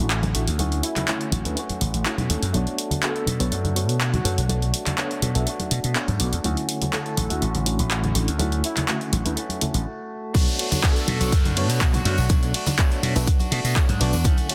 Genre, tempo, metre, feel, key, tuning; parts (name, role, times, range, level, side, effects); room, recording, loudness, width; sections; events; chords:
filtered disco house; 123 BPM; 4/4; straight; B minor; A4 = 439 Hz
reed electric piano; accompaniment; 0.0-14.5 s; D3 to E5; -34 LUFS; equal; fast tremolo, phaser, sidechain pumping, low-pass filter
direct-recorded clean electric guitar; riff; 0.0-14.5 s; A3 to F#4; -35 LUFS; equal; sidechain pumping, low-pass filter
slap bass; bass; 0.0-14.4 s; A1 to B2; -26 LUFS; equal; sidechain pumping, low-pass filter
punchy analog drum machine; drums; 0.1-14.5 s; handclaps, hi-hat, ride cymbal; -29 LUFS; equal; sidechain pumping on hats, sidechain pumping on cymbals
tambourine and congas; percussion; 0.1-14.5 s; -32 LUFS; equal; sidechain pumping on perc, low-pass filter on perc
bright horn section; melody; 0.8-12.3 s; E4 to A4; -37 LUFS; equal; sidechain pumping, low-pass filter, dub echo
electronic kick drum; drums; 10.3-14.4 s; -22 LUFS; equal
downlifter; sound effects; 10.3-14.2 s; -35 LUFS; equal
light reverb; dense, heavily limited modern master; -23 LUFS; mono
0.0-10.3 A section; 10.3-14.5 B section
filter sweep 0.0-10.3; break 9.9-10.3; drop 10.3-14.5
0.0 Dmaj7; 2.5 Bm7; 6.4 Dmaj7; 10.3 Bm7